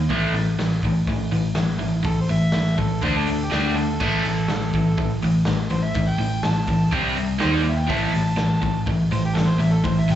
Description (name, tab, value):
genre	garage rock duo or trio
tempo	123 BPM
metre	4/4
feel	straight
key	unclear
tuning	A4 = 440 Hz
part	crunchy overdriven guitar	riff	0.0-10.2 s	A2 to D#4	-21 LUFS	left 1 dB	spring reverb
part	hollow-body short-scale fingered electric bass	bass	0.0-10.2 s	A1 to D#2	-26 LUFS	right 1 dB	none
part	raw garage drum kit	drums	0.1-10.2 s	crash cymbal, hi-hat, kick drum, snare drum	-28 LUFS	equal	none
part	overdriven harmonica	melody	2.1-10.2 s	G4 to A5	-29 LUFS	right 1 dB	slapback echo, tape echo
room	light reverb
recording	live gig heard through the venue's PA, club reverb, nothing above 8.0 kHz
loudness	-19 LUFS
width	side -11 dB against mid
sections	0.0-10.2 A section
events	harmonica solo 0.0-10.2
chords	0.1 A5; 3.0 D5; 4.0 A5; 6.9 C5; 7.4 D#5; 7.9 A5